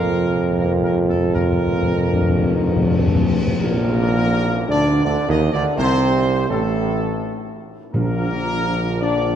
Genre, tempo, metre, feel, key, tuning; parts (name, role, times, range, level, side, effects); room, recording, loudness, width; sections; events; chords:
classical, ceremonial fanfare; 83 BPM; 3/4; straight; Bb major; A4 = 440 Hz
warm trumpet section; melody; 0.0-9.3 s; A4 to Eb5; -26 LUFS; left 2 dB
mellow French horn section; sustained chords; 0.0-9.3 s; A3 to F4; -24 LUFS; left 3 dB
mellow trombone section; sustained chords; 0.0-9.4 s; A2 to Bb3; -26 LUFS; right 3 dB
clear tuba; bass; 0.0-9.4 s; A1 to F2; -21 LUFS; right 3 dB
timpani; percussion; 0.0-3.5, 7.9-9.0 s; F2 to Bb2; -22 LUFS; left 2 dB
tam-tam; percussion; 3.6-6.5 s; -31 LUFS; left 1 dB
wet concert hall reverb, RT60 2.3 s; -16 LUFS; side -9 dB against mid
0.0-3.6 A section; 3.6-9.4 B section
timpani fill 0.0-3.6; band accent 3.6-4.3
0.0 Fsus4; 3.6 Bb; 5.8 Am; 7.9 Bb